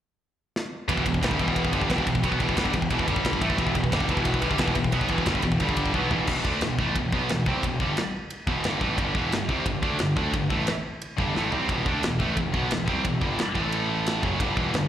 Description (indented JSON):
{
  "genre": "heavy metal",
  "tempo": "178 BPM",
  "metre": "4/4",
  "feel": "straight",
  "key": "E minor",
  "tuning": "A4 = 438 Hz",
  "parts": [
    { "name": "tight metal drum kit", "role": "drums", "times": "0.6-14.8 s", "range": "crash cymbal, kick drum, ride cymbal, snare drum, toms", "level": "-28 LUFS", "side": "equal", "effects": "none" },
    { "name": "warm symphonic string section", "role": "sustained chords", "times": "0.9-6.3 s", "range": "D3 to D5", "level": "-37 LUFS", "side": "left 1 dB", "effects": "none" },
    { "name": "high-gain distorted guitar", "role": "riff", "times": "0.9-14.9 s", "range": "E2 to D4", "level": "-28 LUFS", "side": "right 7 dB", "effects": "distortion, slapback echo" },
    { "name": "high-gain distorted guitar", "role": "riff", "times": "0.9-6.3 s", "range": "E2 to B3", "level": "-29 LUFS", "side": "equal", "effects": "distortion" },
    { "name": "scooped high-gain guitar", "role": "riff", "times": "0.9-14.9 s", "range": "E2 to D4", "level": "-29 LUFS", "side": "left 8 dB", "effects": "distortion, slapback echo" },
    { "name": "fuzz picked electric bass", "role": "bass", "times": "0.9-14.9 s", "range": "E1 to D2", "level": "-30 LUFS", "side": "equal", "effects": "overdrive" }
  ],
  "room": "little or no reverb",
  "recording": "live gig heard through the venue's PA, recital hall reverb",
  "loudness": "-23 LUFS",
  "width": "side -10 dB against mid",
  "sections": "0.9-6.3 A section; 6.3-14.9 B section",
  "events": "drum fill 0.6-0.9, 5.9-6.3, 11.4-11.7",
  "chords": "0.0 N.C.; 0.9 Em; 3.1 G5; 3.4 Em; 5.6 G5; 5.9 Em; 9.0 G5; 11.7 Em; 13.6 A5; 14.2 F#5"
}